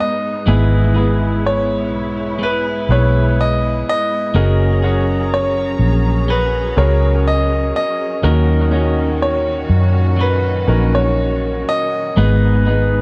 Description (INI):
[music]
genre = pop ballad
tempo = 62 BPM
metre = 4/4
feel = straight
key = unclear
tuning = A4 = 439 Hz
[part]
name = bright grand piano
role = melody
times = 0.0-13.0 s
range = B4 to D#5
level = -23 LUFS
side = equal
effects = dub echo
[part]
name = clear concert grand piano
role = accompaniment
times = 0.0-13.0 s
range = G#2 to C#5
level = -23 LUFS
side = equal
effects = dub echo
[part]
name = muted studio string section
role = sustained chords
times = 0.0-13.0 s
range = A#2 to A#5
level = -30 LUFS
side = equal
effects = none
[part]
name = twelve-string electric guitar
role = arpeggios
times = 0.0-13.0 s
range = G#2 to A#4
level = -29 LUFS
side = equal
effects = dub echo
[part]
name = vintage muted fingered electric bass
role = bass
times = 0.5-13.0 s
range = F#1 to F#2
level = -18 LUFS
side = equal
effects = none
[sound]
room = light reverb, studio ambience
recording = echo-heavy mix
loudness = -16 LUFS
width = mono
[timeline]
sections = 0.0-13.0 A section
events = none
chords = 0.5 E/G#; 4.4 F#add9; 8.2 D#m7; 12.2 G#m